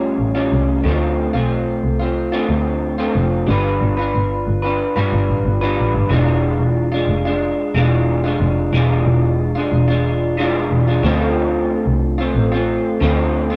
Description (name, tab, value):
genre	indie pop, bedroom pop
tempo	91 BPM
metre	4/4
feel	straight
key	unclear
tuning	A4 = 440 Hz
part	electric guitar through a small old amp	accompaniment	0.0-13.6 s	A2 to B4	-20 LUFS	equal	analog chorus, warbly pitch drift
part	muted double bass	bass	0.0-13.5 s	E1 to G2	-20 LUFS	equal	transformer saturation
room	light reverb, small room ambience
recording	dry, gritty hardware recording, transformer saturation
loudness	-18 LUFS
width	mono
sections	0.0-6.1 A section; 6.1-13.6 B section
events	none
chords	0.0 A7alt; 0.8 Dm7; 3.5 G7; 6.1 E7b9; 11.0 Dm7